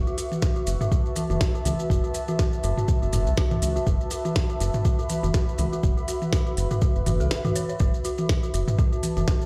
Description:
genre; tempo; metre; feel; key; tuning
minimal techno; 122 BPM; 4/4; swing 56% on 16ths; F# minor; A4 = 440 Hz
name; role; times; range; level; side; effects
round analog bass; bass; 0.0-9.2 s; F#1 to C#2; -27 LUFS; equal; sidechain pumping
warbly tape-like pad; texture; 0.0-9.5 s; F#4 to C#6; -34 LUFS; equal; chorus, built-in reverb, sidechain pumping
dark detuned synth bell; riff; 0.1-9.3 s; F#4 to C#5; -35 LUFS; equal; chorus, sidechain pumping, tape echo
maracas; percussion; 0.1-9.5 s; none; -42 LUFS; equal; none
minimal click drum kit; drums; 0.2-9.4 s; hi-hat, snare drum; -33 LUFS; equal; none
electronic congas and toms; percussion; 0.3-9.3 s; none; -32 LUFS; equal; overdrive
electronic kick drum; drums; 0.4-9.4 s; none; -25 LUFS; equal; none
room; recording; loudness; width
light reverb; played on a big sound system in a bare room, stone room reverb; -24 LUFS; mono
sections
0.0-9.5 A section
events
break 7.3-7.8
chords
0.0 F#m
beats
0.42 0.92 1.41 | 1.90 2.39 2.88 3.38 | 3.87 4.36 4.85 5.34 | 5.83 6.33 6.82 7.31 | 7.80 8.29 8.79 9.28

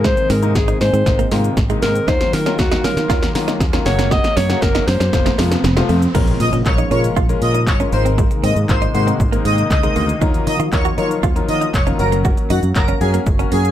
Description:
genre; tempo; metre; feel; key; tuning
dance-pop; 118 BPM; 4/4; straight; unclear; A4 = 441 Hz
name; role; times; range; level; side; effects
breathy alto saxophone; melody; 0.0-5.4 s; Gb4 to Eb5; -20 LUFS; left 1 dB; ping-pong delay
clear concert grand piano; accompaniment; 0.0-13.7 s; C3 to Bb4; -24 LUFS; left 5 dB; sidechain pumping
sweeping resonant pad; sustained chords; 0.0-13.7 s; C3 to Ab4; -25 LUFS; left 1 dB; chorus, sidechain pumping
direct-recorded clean electric guitar; riff; 0.0-13.6 s; Ab3 to Gb4; -24 LUFS; right 6 dB; wide subtle chorus
fingered electric bass; bass; 0.0-13.7 s; F1 to Eb3; -19 LUFS; equal; sidechain pumping
punchy analog drum machine; drums; 0.0-13.7 s; crash cymbal, handclaps, hi-hat, kick drum, shaker, snare drum; -18 LUFS; equal; none
riser and impact; sound effects; 1.3-8.2 s; none; -29 LUFS; equal; none
airy dreamy lead; melody; 6.4-13.7 s; Gb4 to Eb5; -22 LUFS; equal; chorus, ping-pong delay
room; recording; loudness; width
light reverb; dark, warm production; -14 LUFS; side -11 dB against mid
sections
0.0-6.1 A section; 6.1-13.7 B section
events
build-up 0.0-6.1; drum fill 0.0-6.1; drop 6.1-13.7; impact 6.1-8.2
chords
0.0 Abadd9; 2.1 Ebmadd9; 3.9 Gb; 5.1 F; 6.1 Bbm7; 7.9 Abadd9; 10.2 Ebmadd9; 12.0 Gb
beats
| 0.05 0.55 1.06 1.57 | 2.08 2.59 3.10 3.60 | 4.11 4.62 5.13 5.64 | 6.15 6.66 7.16 7.67 | 8.18 8.69 9.20 9.71 | 10.21 10.72 11.23 11.74 | 12.25 12.76 13.27

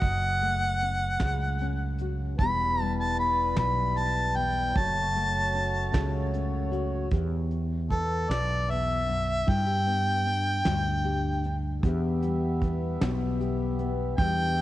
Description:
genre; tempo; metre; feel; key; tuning
acoustic folk duo or small band; 51 BPM (dotted quarters); 6/8; straight; E dorian; A4 = 440 Hz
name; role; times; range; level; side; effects
clear harmonica; melody; 0.0-14.6 s; A4 to B5; -28 LUFS; equal; cassette tape
nylon-string guitar; accompaniment; 0.0-14.6 s; E2 to G4; -33 LUFS; left 6 dB; cassette tape
mellow fretless electric bass; bass; 0.0-14.6 s; E1 to G2; -29 LUFS; right 1 dB; none
soft brush drum kit; drums; 0.0-14.6 s; hi-hat, kick drum, snare drum; -30 LUFS; right 1 dB; none
pedal harmonium; sustained chords; 2.4-7.1, 11.8-14.6 s; G3 to E5; -36 LUFS; right 1 dB; cassette tape
room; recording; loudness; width
light reverb; home recording on cassette; -25 LUFS; side -15 dB against mid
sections
0.0-7.1 A section; 7.1-14.6 B section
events
harmonica solo 7.1-14.6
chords
0.0 F#m; 2.4 Em; 4.8 F#m; 7.1 Em; 9.5 G; 11.8 Em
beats
| 0.02 1.20 | 2.39 3.57 | 4.75 5.93 | 7.12 8.30 | 9.47 10.65 | 11.83 13.01 | 14.18

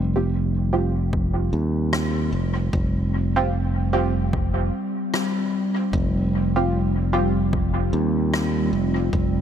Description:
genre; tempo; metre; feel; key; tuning
ambient dub; 75 BPM; 4/4; swing 58% on 16ths; unclear; A4 = 440 Hz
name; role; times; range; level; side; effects
warbly tape-like pad; sustained chords; 0.0-9.4 s; G3 to G4; -26 LUFS; right 1 dB; chorus, built-in reverb
modern bright fingered electric bass; bass; 0.0-9.4 s; F1 to Eb2; -22 LUFS; equal; none
filtered dub chord stab; stabs; 0.2-7.3 s; C4 to G4; -28 LUFS; right 3 dB; lush chorus, dub echo
electronic kick drum; drums; 1.1-9.3 s; none; -26 LUFS; equal; overdrive
rim click; drums; 1.9-8.5 s; none; -30 LUFS; left 1 dB; dub echo
room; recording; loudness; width
light reverb, small room ambience; none; -20 LUFS; side -9 dB against mid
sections
0.0-9.4 A section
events
none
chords
0.0 Fsus2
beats
0.33 1.13 1.93 | 2.73 3.53 4.33 5.13 | 5.93 6.73 7.53 8.33 | 9.13

